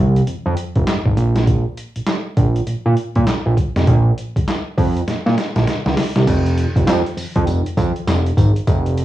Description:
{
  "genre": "R&B, new jack swing",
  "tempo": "100 BPM",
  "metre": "4/4",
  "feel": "swing 62% on 16ths",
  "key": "Bb minor",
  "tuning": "A4 = 440 Hz",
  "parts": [
    { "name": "fat analog bass", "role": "bass", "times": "0.0-9.0 s", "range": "F1 to Bb2", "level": "-16 LUFS", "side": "right 1 dB", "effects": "none" },
    { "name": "boom bap sampler-style drum kit", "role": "drums", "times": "0.2-9.0 s", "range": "crash cymbal, handclaps, hi-hat, kick drum, snare drum, tambourine", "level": "-19 LUFS", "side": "equal", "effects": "overdrive, cassette tape" }
  ],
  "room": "light reverb",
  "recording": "home recording on cassette, studio reverb",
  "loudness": "-15 LUFS",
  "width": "side -14 dB against mid",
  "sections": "0.0-6.3 A section; 6.3-9.0 B section",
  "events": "drum fill 5.1-6.3",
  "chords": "none"
}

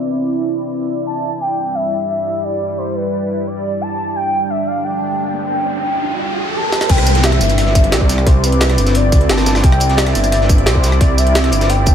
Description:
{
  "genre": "liquid drum and bass",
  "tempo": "175 BPM",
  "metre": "4/4",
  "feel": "straight",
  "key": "C major",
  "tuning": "A4 = 440 Hz",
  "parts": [
    { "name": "lush unison pad", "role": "sustained chords", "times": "0.0-11.9 s", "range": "G3 to D5", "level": "-21 LUFS", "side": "right 1 dB", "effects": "chorus, phaser" },
    { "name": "warm velvety synth lead", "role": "melody", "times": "1.1-11.9 s", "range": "B4 to A5", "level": "-20 LUFS", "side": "left 1 dB", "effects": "chorus, ping-pong delay" },
    { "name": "riser and downlifter", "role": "sound effects", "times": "4.9-9.6 s", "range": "none", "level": "-22 LUFS", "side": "equal", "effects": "none" },
    { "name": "jungle sampler-style drum kit", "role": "drums", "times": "6.7-11.9 s", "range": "crash cymbal, hi-hat, rim click, snare drum, tambourine", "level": "-20 LUFS", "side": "right 1 dB", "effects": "studio reverb" },
    { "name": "swelling detuned saw bass", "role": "bass", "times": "6.9-11.9 s", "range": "G1 to D2", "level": "-14 LUFS", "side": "equal", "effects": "none" },
    { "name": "crunchy breakbeat drum kit", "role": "drums", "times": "6.9-11.9 s", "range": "hi-hat, snare drum", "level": "-25 LUFS", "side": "equal", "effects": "high-pass filter on hats, studio reverb, high-pass filter on snare, high-pass filter on room" },
    { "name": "electronic kick drum", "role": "drums", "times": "6.9-11.9 s", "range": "none", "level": "-12 LUFS", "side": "equal", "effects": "studio reverb" }
  ],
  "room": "light reverb",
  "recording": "low-pass filter",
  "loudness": "-13 LUFS",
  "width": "side -9 dB against mid",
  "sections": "0.0-6.9 A section; 6.9-11.9 B section",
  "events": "filter sweep on analog synth pad 0.0-6.9; filter sweep 0.0-6.9; riser 4.9-6.9; drum fill 6.7; drop 6.9-11.9",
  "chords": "0.0 Cmaj9; 1.4 Em7; 6.9 Cadd9"
}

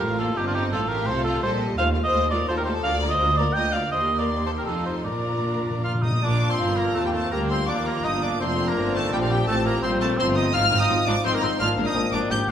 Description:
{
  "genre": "quick classical-period movement for symphony orchestra",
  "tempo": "167 BPM",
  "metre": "3/4",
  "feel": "rubato",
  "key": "Bb major",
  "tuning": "A4 = 440 Hz",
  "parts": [
    { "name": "rich studio violin section", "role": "melody", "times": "0.0-12.4 s", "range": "Eb5 to G6", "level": "-29 LUFS", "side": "left 2 dB", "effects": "none" },
    { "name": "warm cor anglais", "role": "second line", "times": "0.0-12.5 s", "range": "F3 to G5", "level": "-27 LUFS", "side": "right 1 dB", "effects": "none" },
    { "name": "rich studio viola section", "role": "accompaniment", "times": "0.0-12.4 s", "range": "D3 to G4", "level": "-30 LUFS", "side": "equal", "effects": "none" },
    { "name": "rich studio cello section", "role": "bass", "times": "0.0-12.5 s", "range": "D2 to C3", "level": "-30 LUFS", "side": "right 1 dB", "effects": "none" },
    { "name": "rich studio double bass section", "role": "bass", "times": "0.0-12.5 s", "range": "F1 to Eb2", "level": "-29 LUFS", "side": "right 2 dB", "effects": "none" },
    { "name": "rich studio violin section", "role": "second line", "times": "0.2-12.5 s", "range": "A3 to Eb5", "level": "-31 LUFS", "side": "left 4 dB", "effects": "none" },
    { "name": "timpani", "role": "percussion", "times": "5.1-6.2 s", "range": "Bb2", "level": "-29 LUFS", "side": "left 1 dB", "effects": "none" },
    { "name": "bright clarinet", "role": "second line", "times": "5.8-12.5 s", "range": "F4 to G5", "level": "-32 LUFS", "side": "left 2 dB", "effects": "none" },
    { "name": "warm bassoon", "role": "accompaniment", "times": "6.2-12.4 s", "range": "C4 to G4", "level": "-30 LUFS", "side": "right 2 dB", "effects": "none" },
    { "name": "dark French horn section", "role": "sustained chords", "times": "6.2-12.5 s", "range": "A3 to F4", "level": "-29 LUFS", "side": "left 4 dB", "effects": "none" }
  ],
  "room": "wet recital hall reverb, RT60 1.9 s",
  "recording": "minimal, uncompressed stereo recording",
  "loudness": "-20 LUFS",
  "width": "side -9 dB against mid",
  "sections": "0.0-6.2 A section; 6.2-12.5 A section",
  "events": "timpani fill 5.1-6.2",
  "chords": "0.0 F; 0.7 F/A; 1.8 F7/Eb; 2.8 Bb/D; 3.9 Cm7/Eb; 4.7 F7; 5.1 Bb; 7.3 Bb/D; 8.4 F; 9.5 F/A; 10.5 Fm7/Ab; 11.6 Bb7/Ab"
}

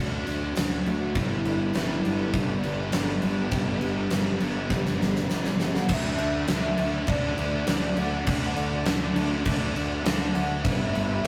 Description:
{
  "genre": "rock, shoegaze and dream pop",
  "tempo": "101 BPM",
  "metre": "4/4",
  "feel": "straight",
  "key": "D major",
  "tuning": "A4 = 438 Hz",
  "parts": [
    { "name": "string machine, cellos", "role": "sustained chords", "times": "0.0-11.3 s", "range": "F#4 to D6", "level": "-41 LUFS", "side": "equal", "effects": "none" },
    { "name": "thick fuzz guitar", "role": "riff", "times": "0.0-11.3 s", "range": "G2 to D4", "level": "-33 LUFS", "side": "equal", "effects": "distortion" },
    { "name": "fuzz fingered electric bass", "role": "bass", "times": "0.0-11.3 s", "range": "G1 to D2", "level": "-34 LUFS", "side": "equal", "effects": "overdrive" },
    { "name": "huge arena drum kit", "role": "drums", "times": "0.3-11.3 s", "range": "crash cymbal, kick drum, snare drum", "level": "-30 LUFS", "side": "equal", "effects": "none" },
    { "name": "tambourine", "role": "percussion", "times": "0.6-5.4 s", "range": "none", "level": "-52 LUFS", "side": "equal", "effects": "none" },
    { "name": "warm velvety synth lead", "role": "melody", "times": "0.9-11.3 s", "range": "D4 to F#5", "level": "-35 LUFS", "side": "equal", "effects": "chorus" },
    { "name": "crunchy overdriven guitar", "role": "riff", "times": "1.2-11.3 s", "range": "G2 to B4", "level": "-35 LUFS", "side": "equal", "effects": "none" }
  ],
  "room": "light reverb",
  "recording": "rough rehearsal-room recording",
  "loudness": "-26 LUFS",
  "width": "mono",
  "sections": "0.0-5.9 A section; 5.9-11.3 A section",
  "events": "drum fill 4.7-5.9",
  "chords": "0.0 Dmaj7; 1.1 Gadd9; 5.9 D; 10.6 Gadd9"
}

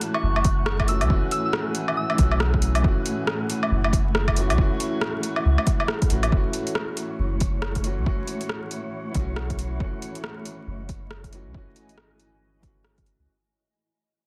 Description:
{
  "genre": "future garage",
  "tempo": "138 BPM",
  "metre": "4/4",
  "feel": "swing 61% on 16ths",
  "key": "unclear",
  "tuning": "A4 = 441 Hz",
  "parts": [
    { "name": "clear upright piano", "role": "accompaniment", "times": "0.0-13.3 s", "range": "E3 to F#4", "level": "-34 LUFS", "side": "equal", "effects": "sidechain pumping, low-pass filter, tape echo" },
    { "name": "granular cloud pad", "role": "sustained chords", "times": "0.0-13.3 s", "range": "A3 to C#6", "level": "-37 LUFS", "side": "equal", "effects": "built-in reverb, vintage 12-bit sampler grit, sidechain pumping" },
    { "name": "deep house drum kit", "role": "drums", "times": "0.0-13.2 s", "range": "hi-hat, rim click, woodblock", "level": "-30 LUFS", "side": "equal", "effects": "overdrive" },
    { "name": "wind-like tuned noise texture", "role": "texture", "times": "0.0-13.3 s", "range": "C#5 to F#5", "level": "-44 LUFS", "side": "equal", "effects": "built-in reverb" },
    { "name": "soft synth bell", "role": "melody", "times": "0.1-2.3 s", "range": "C#6 to E6", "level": "-33 LUFS", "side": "equal", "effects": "chorus, tape echo" },
    { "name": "warm sub bass", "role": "bass", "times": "0.2-13.3 s", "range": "F#1 to C#2", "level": "-26 LUFS", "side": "equal", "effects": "sidechain pumping" },
    { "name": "electronic kick drum", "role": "drums", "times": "0.4-13.0 s", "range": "none", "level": "-26 LUFS", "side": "equal", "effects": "overdrive" }
  ],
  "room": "digital ambience",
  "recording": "dense, heavily limited modern master, vinyl crackle",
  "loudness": "-24 LUFS",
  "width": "mono",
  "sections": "0.0-6.3 A section; 6.3-13.3 B section",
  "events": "fade-out 6.3-13.3",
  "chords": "0.0 F#m7"
}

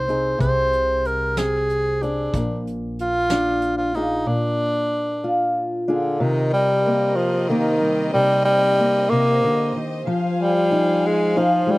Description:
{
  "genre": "acoustic folk duo or small band",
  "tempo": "62 BPM (dotted quarters)",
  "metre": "6/8",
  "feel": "straight",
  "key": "C minor",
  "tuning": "A4 = 441 Hz",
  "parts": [
    { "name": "warm tenor saxophone", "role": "melody", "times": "0.0-11.8 s", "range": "D3 to C5", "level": "-20 LUFS", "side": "equal", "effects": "none" },
    { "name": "fingerpicked old ladder-braced acoustic guitar", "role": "accompaniment", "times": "0.0-11.8 s", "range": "Bb2 to C5", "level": "-22 LUFS", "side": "left 1 dB", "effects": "none" },
    { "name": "upright bass", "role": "bass", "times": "0.0-4.2 s", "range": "Bb1 to C2", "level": "-29 LUFS", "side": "equal", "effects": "none" },
    { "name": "soft brush drum kit", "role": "drums", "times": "0.1-4.1 s", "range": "hi-hat, kick drum, snare drum", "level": "-26 LUFS", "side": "right 1 dB", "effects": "none" },
    { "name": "warm studio string section", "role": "sustained chords", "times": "6.2-11.8 s", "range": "C4 to Ab5", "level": "-29 LUFS", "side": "equal", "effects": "none" }
  ],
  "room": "little or no reverb",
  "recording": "recorded outdoors, with no room sound",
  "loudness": "-18 LUFS",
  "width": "side -20 dB against mid",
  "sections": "0.0-6.2 A section; 6.2-11.8 B section",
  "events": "none",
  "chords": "0.0 Ab/C; 2.3 Bb7; 6.2 Cm7; 10.1 Fm7"
}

